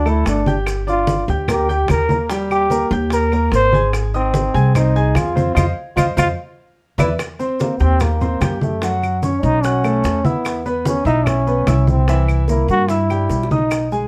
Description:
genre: Afro-Cuban jazz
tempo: 147 BPM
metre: 4/4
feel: straight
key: unclear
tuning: A4 = 439 Hz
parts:
  - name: clear trombone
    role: melody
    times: 0.0-13.9 s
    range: A3 to C5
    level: -22 LUFS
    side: equal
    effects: none
  - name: upright bass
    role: bass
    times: 0.0-14.1 s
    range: G1 to G2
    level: -21 LUFS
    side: equal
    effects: none
  - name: warm concert grand piano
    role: accompaniment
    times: 0.1-14.1 s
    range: E3 to Ab6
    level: -25 LUFS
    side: equal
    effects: none
  - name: bongos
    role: percussion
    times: 0.1-13.9 s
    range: none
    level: -32 LUFS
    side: equal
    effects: none
  - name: claves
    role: percussion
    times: 0.1-13.9 s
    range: none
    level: -31 LUFS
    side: equal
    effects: none
  - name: congas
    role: percussion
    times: 0.1-14.1 s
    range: none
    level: -25 LUFS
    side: equal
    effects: none
  - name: maracas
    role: percussion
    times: 0.1-14.1 s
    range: none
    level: -42 LUFS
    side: equal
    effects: none
room: light reverb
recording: dark, warm production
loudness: -17 LUFS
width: mono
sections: 0.0-7.2 A section; 7.2-14.1 B section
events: band accent 5.6-7.2; drum fill 6.6-7.2, 13.3-13.7; trombone solo 7.2-14.1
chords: 0.0 D5; 0.7 Gm7; 2.3 Eb; 3.9 Ab6; 5.6 F5; 6.4 E5; 7.2 Eb6; 8.8 Gb5; 9.6 Bsus2; 10.5 E5; 12.1 C7

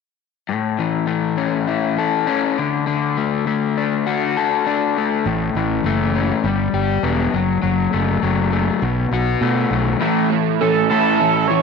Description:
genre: rock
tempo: 101 BPM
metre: 4/4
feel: straight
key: A major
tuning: A4 = 438 Hz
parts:
  - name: crunchy overdriven guitar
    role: riff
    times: 0.5-11.6 s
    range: A2 to A4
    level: -18 LUFS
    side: left 8 dB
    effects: none
  - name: fuzz fingered electric bass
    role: bass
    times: 5.3-9.9 s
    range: E1 to B2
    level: -21 LUFS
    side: right 3 dB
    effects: overdrive
  - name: crunchy overdriven guitar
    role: riff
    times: 10.0-11.6 s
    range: A2 to E4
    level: -18 LUFS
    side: right 15 dB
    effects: analog chorus, slapback echo
  - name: overdriven synth lead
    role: melody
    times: 10.6-11.6 s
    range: A4 to C#5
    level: -17 LUFS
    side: right 5 dB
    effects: phaser, slapback echo
room: moderate echo chamber reverb, RT60 2.7 s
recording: 1960s-style stereo with parts hard left and right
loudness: -16 LUFS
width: side -5 dB against mid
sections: 0.5-10.0 A section; 10.0-11.6 B section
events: none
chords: 0.5 A; 2.6 D; 5.3 A; 6.5 G; 7.3 F#m; 8.8 B5; 10.0 A

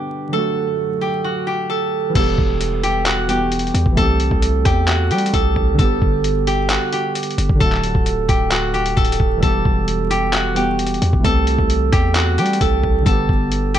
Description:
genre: hip hop, trap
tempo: 132 BPM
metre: 4/4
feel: half-time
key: E minor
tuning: A4 = 441 Hz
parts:
  - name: concert harp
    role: melody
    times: 0.0-13.8 s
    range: F#4 to A4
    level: -20 LUFS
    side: right 2 dB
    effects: none
  - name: warbly lo-fi synth keys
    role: accompaniment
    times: 0.0-13.8 s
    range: D3 to G4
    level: -24 LUFS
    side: right 1 dB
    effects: chorus
  - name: dark analog pad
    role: sustained chords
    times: 0.0-2.1 s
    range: F#3 to B4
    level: -31 LUFS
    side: left 1 dB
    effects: wide subtle chorus
  - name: hard-hitting 808-style bass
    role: bass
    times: 2.2-13.8 s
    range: D1 to G3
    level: -20 LUFS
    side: equal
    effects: none
  - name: lo-fi sampler-style drum kit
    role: drums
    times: 2.2-13.8 s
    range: crash cymbal, handclaps, hi-hat, kick drum, rim click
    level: -19 LUFS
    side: equal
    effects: none
room: digital ambience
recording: vinyl crackle, nothing above 10.9 kHz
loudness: -15 LUFS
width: side -10 dB against mid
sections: 0.0-2.2 A section; 2.2-13.8 B section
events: none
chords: 0.3 D; 2.2 Em; 4.0 C6; 5.8 G; 7.6 D; 9.4 Em; 11.2 C6; 13.1 G

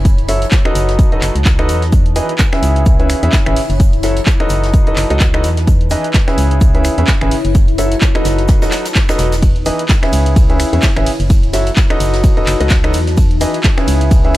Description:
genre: piano house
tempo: 128 BPM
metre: 4/4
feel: swing 57% on 16ths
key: unclear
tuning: A4 = 438 Hz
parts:
  - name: organ-like FM bass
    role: bass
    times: 0.0-14.4 s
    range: E1 to E2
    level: -16 LUFS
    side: equal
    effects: sidechain pumping
  - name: deep dark ambient pad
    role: texture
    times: 0.0-14.4 s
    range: D#4 to A5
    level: -23 LUFS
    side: left 2 dB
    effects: chorus, built-in reverb, sidechain pumping
  - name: electronic kick drum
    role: drums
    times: 0.1-14.2 s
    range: none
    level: -12 LUFS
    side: equal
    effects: none
  - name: jazz brush drum kit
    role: drums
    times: 0.1-14.4 s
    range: hi-hat, shaker, snare drum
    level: -30 LUFS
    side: right 1 dB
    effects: high-pass filter on hats, high-pass filter on snare, high-pass filter on perc, high-pass filter on room
  - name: punchy analog drum machine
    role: drums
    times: 0.1-14.4 s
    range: finger snaps, handclaps, hi-hat, ride cymbal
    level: -21 LUFS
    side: equal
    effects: none
  - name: bright grand piano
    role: riff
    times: 0.3-14.4 s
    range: C#3 to E5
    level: -18 LUFS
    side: right 1 dB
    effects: sidechain pumping, digital delay
room: small room ambience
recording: dark, warm production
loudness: -10 LUFS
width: side -16 dB against mid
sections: 0.0-14.4 A section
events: none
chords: 0.1 F#m7; 1.9 Emaj7; 2.6 C#m7; 3.8 F#m7; 5.7 Emaj7; 6.4 C#m7; 7.5 F#m7; 8.3 B7/F#; 9.4 Emaj7; 10.1 C#m7; 11.3 F#m7; 13.2 Emaj7

